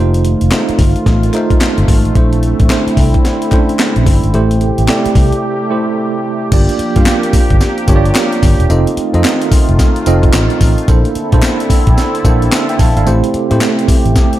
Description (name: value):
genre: R&B, new jack swing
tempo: 110 BPM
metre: 4/4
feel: swing 62% on 16ths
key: G dorian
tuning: A4 = 440 Hz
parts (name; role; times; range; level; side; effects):
- tine electric piano; accompaniment; 0.0-14.4 s; A3 to A5; -16 LUFS; right 3 dB; medium stereo tremolo
- sweeping resonant pad; sustained chords; 0.0-14.4 s; C3 to A4; -20 LUFS; left 1 dB; wide subtle chorus
- vintage muted fingered electric bass; bass; 0.0-14.1 s; E1 to Bb2; -13 LUFS; equal; none
- breakbeat sampler-style drum kit; drums; 0.1-14.4 s; crash cymbal, handclaps, hi-hat, kick drum, snare drum, tambourine; -12 LUFS; equal; gated reverb
- group handclap; percussion; 0.5-13.8 s; none; -28 LUFS; left 7 dB; none
room: little or no reverb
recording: none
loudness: -9 LUFS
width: side -14 dB against mid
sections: 0.0-6.5 A section; 6.5-14.4 B section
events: break 5.4-6.5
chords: 0.0 F7; 2.2 Bbmaj9#11; 4.3 Am7; 6.5 Gm7; 8.7 F7; 10.9 Bbmaj9#11; 13.1 Am7